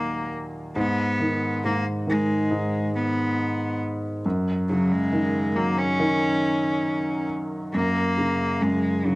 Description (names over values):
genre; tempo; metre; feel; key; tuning
pop ballad; 69 BPM; 4/4; straight; Eb minor; A4 = 440 Hz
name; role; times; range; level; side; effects
clear cello; melody; 0.0-9.2 s; Gb3 to Db4; -25 LUFS; left 1 dB; cassette tape
clear grand piano; accompaniment; 0.0-9.2 s; Eb2 to Gb3; -24 LUFS; equal; cassette tape
room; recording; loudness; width
wet studio reverb, RT60 0.6 s; home recording on cassette; -22 LUFS; side -21 dB against mid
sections
0.0-9.2 A section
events
none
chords
0.0 Ebm; 0.8 Abm; 4.2 Ebm7/Gb; 7.7 Gb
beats
| 0.76 1.63 2.51 3.38 | 4.25 5.12 5.99 6.86 | 7.74 8.62